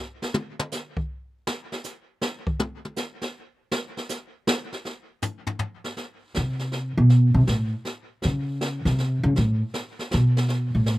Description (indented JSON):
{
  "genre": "jazz piano trio",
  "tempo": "160 BPM",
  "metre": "3/4",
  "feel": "swing 66% on 8ths",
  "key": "unclear",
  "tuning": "A4 = 440 Hz",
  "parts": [
    { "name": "jazz brush drum kit", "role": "drums", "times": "0.2-11.0 s", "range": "brushed snare drum, hi-hat, kick drum, snare drum, toms", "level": "-28 LUFS", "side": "equal", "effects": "none" },
    { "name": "upright bass", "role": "bass", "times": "6.4-11.0 s", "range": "A2 to Db3", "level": "-20 LUFS", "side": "equal", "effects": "none" }
  ],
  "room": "little or no reverb",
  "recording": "recorded outdoors, with no room sound",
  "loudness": "-23 LUFS",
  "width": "side -18 dB against mid",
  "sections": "0.0-6.0 A section; 6.0-11.0 A section",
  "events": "drum solo 0.0-6.0; upright bass solo 6.0-11.0",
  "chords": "none"
}